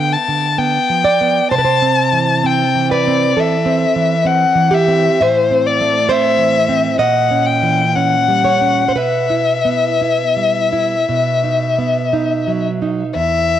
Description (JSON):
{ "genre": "romantic duo for violin and classical guitar", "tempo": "56-69 BPM", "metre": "4/4", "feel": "rubato", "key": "unclear", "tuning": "A4 = 440 Hz", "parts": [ { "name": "warm violin", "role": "melody", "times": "0.0-13.6 s", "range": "C5 to A5", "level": "-15 LUFS", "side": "left 5 dB", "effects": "cassette tape, tape echo" }, { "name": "nylon-string guitar", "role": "accompaniment", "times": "0.0-13.6 s", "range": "E2 to E5", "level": "-16 LUFS", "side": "right 4 dB", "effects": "cassette tape" } ], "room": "moderate spring reverb, RT60 1.2 s", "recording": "home recording on cassette", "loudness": "-12 LUFS", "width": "side -10 dB against mid", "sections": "0.0-13.2 A section", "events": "none", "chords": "0.0 G7; 1.5 C; 5.2 Am; 7.0 A#dim7; 9.0 Em/B; 11.1 B" }